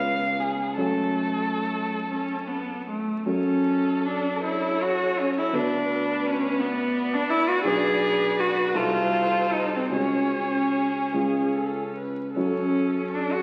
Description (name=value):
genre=classical, slow romantic movement for piano quartet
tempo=47-58 BPM (dotted quarters)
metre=6/8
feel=rubato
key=F# minor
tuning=A4 = 436 Hz
part: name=warm violin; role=melody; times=0.0-11.7 s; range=G#4 to E#5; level=-33 LUFS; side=equal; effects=none
part: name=clear cello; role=second line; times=0.0-13.4 s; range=A3 to G#4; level=-28 LUFS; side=equal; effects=none
part: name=dark concert grand piano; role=accompaniment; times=0.0-13.4 s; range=B1 to B4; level=-30 LUFS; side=equal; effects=none
part: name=warm viola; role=accompaniment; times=3.3-13.4 s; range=G#4 to D5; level=-36 LUFS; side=equal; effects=none
room=wet scoring stage reverb, RT60 1.7 s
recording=very old 78 rpm record, vinyl crackle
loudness=-25 LUFS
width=mono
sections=0.0-3.3 A section; 3.3-13.4 A section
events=none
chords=0.0 C#7; 0.8 F#m; 5.6 Bm/D; 7.7 Bm; 8.8 Cdim7; 9.9 C#sus4; 11.2 C#; 12.4 F#m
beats=| 0.79 2.05 | 3.29 4.45 | 5.56 6.62 | 7.67 8.77 | 9.94 11.16 | 12.37